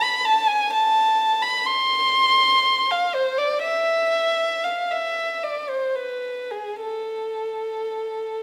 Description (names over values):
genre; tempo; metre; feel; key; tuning
classical, free, expressive piece for unaccompanied violin; 47-65 BPM; 3/4; rubato; A minor; A4 = 442 Hz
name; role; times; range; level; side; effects
dark violin; solo; 0.0-8.4 s; G#4 to C6; -22 LUFS; equal; none
room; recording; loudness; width
moderate recital hall reverb, RT60 1.5 s; none; -22 LUFS; mono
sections
0.0-8.4 A section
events
none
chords
none